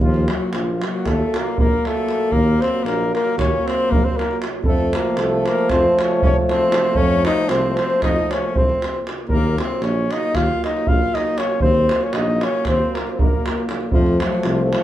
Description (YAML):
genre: balkan folk, Balkan brass band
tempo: 233 BPM (eighths)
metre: 9/8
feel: straight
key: Eb dorian sharp4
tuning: A4 = 440 Hz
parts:
  - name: mellow flugelhorn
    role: melody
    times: 0.0-14.8 s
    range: F4 to F5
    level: -22 LUFS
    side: equal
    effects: none
  - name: clear alto saxophone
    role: second line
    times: 0.0-14.8 s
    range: F3 to F4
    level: -25 LUFS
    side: left 4 dB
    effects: none
  - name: warm euphonium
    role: accompaniment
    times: 0.0-14.8 s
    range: F3 to Gb3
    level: -25 LUFS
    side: right 2 dB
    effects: none
  - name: warm trombone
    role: accompaniment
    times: 0.0-14.8 s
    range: A3 to Bb3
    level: -28 LUFS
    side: left 3 dB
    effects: none
  - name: mellow tuba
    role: bass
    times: 0.0-14.7 s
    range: Bb1 to F2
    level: -22 LUFS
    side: equal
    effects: none
  - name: davul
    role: percussion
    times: 0.0-14.8 s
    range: none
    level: -22 LUFS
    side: right 1 dB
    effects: none
room: moderate studio reverb, RT60 0.7 s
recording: band playing live in one room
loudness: -16 LUFS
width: side -12 dB against mid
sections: 0.0-14.8 A section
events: none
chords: 0.0 Ebm; 4.6 F; 9.3 Ebm; 13.9 F